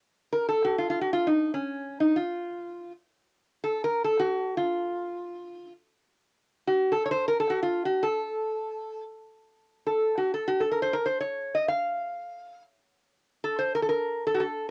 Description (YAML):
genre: Persian modal ensemble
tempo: free time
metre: none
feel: none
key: F dastgah homayun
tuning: A4 = 440 Hz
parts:
  - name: metal-body resonator slide guitar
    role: solo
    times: 0.3-14.7 s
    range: Db4 to F5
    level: -28 LUFS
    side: equal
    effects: cassette tape
room: wet booth ambience, RT60 0.2 s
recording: home recording on cassette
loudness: -28 LUFS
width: mono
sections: 0.0-14.7 A section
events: none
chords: none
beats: free time